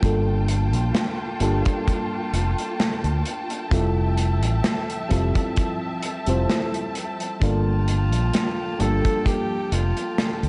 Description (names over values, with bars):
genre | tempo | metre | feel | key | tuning
vaporwave | 65 BPM | 4/4 | swing 53% on 16ths | unclear | A4 = 441 Hz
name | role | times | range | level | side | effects
mellow FM electric piano | accompaniment | 0.0-10.5 s | G3 to C5 | -29 LUFS | equal | subtle chorus, cassette tape, tape echo
warm studio string section | sustained chords | 0.0-10.5 s | F3 to A5 | -33 LUFS | equal | none
fingered electric bass | bass | 0.0-10.5 s | F1 to D2 | -24 LUFS | equal | tube saturation
kick drum | drums | 0.0-9.5 s | none | -26 LUFS | equal | none
loose indie drum kit | drums | 0.0-10.5 s | hi-hat, snare drum | -30 LUFS | equal | gated reverb
clear alto saxophone | melody | 7.4-10.5 s | F4 to A4 | -31 LUFS | equal | tape echo
room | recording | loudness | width
light reverb, studio ambience | nothing above 10.9 kHz | -23 LUFS | mono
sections
0.0-10.5 A section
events
none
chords
0.0 Gm9; 3.7 Fmaj9; 7.4 Gm9